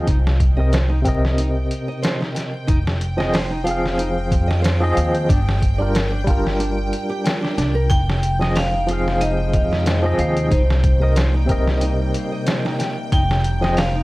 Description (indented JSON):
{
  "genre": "trip hop",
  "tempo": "92 BPM",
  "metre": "4/4",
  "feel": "swing 55% on 16ths",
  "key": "F dorian",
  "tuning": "A4 = 440 Hz",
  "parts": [
    { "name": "barky tine electric piano", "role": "accompaniment", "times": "0.0-13.8 s", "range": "C3 to F5", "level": "-23 LUFS", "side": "equal", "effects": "tremolo, tape echo" },
    { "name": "upright bass", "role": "bass", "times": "0.0-14.0 s", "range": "F1 to F2", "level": "-20 LUFS", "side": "equal", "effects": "tube saturation" },
    { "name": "bowed-like drone", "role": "texture", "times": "0.0-14.0 s", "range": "G5", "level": "-33 LUFS", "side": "right 1 dB", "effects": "built-in reverb, phaser" },
    { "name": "nylon-string guitar", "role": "arpeggios", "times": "0.1-14.0 s", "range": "D4 to G5", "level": "-29 LUFS", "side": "right 1 dB", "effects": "tape echo" },
    { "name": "trip hop sampler-style drum kit", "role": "drums", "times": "0.1-13.9 s", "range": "hi-hat, kick drum, snare drum", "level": "-21 LUFS", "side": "equal", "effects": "none" },
    { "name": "vibraphone with hard mallets", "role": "melody", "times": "7.9-14.0 s", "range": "C5 to G5", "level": "-25 LUFS", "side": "equal", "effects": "tape echo" },
    { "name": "warbly tape-like pad", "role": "sustained chords", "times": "8.3-14.0 s", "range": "C3 to Eb4", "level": "-28 LUFS", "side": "equal", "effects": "chorus, built-in reverb" }
  ],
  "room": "digital ambience",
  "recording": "dry, gritty hardware recording, vinyl crackle",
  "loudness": "-16 LUFS",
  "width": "side -20 dB against mid",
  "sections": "0.0-14.0 A section",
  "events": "none",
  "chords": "0.1 Cm7; 2.7 Fm7; 5.3 Gm7; 7.9 Fm7; 10.5 Cm7; 13.1 Fm7",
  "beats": "| 0.07 0.72 1.38 2.03 | 2.68 3.33 3.98 4.64 | 5.29 5.94 6.59 7.25 | 7.90 8.55 9.20 9.86 | 10.51 11.16 11.81 12.46 | 13.12 13.77"
}